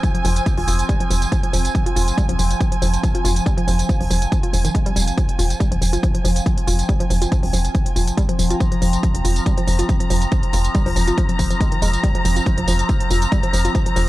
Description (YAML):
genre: driving peak-time techno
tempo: 140 BPM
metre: 4/4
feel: straight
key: F minor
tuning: A4 = 441 Hz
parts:
  - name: woody wave-folded pluck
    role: riff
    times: 0.0-14.0 s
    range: Eb3 to F4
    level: -26 LUFS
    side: equal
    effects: chorus, sidechain pumping, analog delay
  - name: overtone-sweeping drone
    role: drone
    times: 0.0-14.1 s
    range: F3 to C4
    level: -27 LUFS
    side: equal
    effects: chorus, built-in reverb, phaser, sidechain pumping
  - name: electronic hi-hat and tambourine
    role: drums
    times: 0.0-14.1 s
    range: none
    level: -28 LUFS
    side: right 2 dB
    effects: overdrive, sidechain pumping on hats, sidechain pumping on perc
  - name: electronic kick drum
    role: drums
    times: 0.0-13.8 s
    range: none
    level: -19 LUFS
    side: equal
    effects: overdrive
  - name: dark chamber string section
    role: texture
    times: 0.0-14.1 s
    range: Ab5 to Bb5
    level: -27 LUFS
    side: right 1 dB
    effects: sidechain pumping
  - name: tight sequencer bass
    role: bass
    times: 0.2-14.1 s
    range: F1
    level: -19 LUFS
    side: equal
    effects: sidechain pumping
room: little or no reverb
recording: dry, gritty hardware recording, cassette tape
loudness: -16 LUFS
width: side -17 dB against mid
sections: 0.0-14.1 A section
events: none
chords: 0.0 Fm